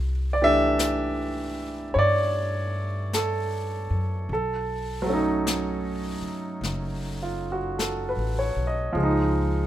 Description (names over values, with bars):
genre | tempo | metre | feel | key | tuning
jazz ballad | 52 BPM | 4/4 | swing 66% on 8ths | unclear | A4 = 440 Hz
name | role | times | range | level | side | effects
upright bass | bass | 0.0-9.7 s | F#1 to G2 | -29 LUFS | equal | none
clear baby grand piano | accompaniment | 0.3-9.7 s | E3 to E5 | -25 LUFS | right 1 dB | none
jazz brush drum kit | drums | 0.8-9.7 s | brushed snare drum, hi-hat, snare drum | -34 LUFS | left 4 dB | none
room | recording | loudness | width
light reverb | minimal, uncompressed stereo recording | -23 LUFS | side -12 dB against mid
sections
0.0-9.7 A section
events
none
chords
0.0 C69; 4.3 B9; 9.0 Db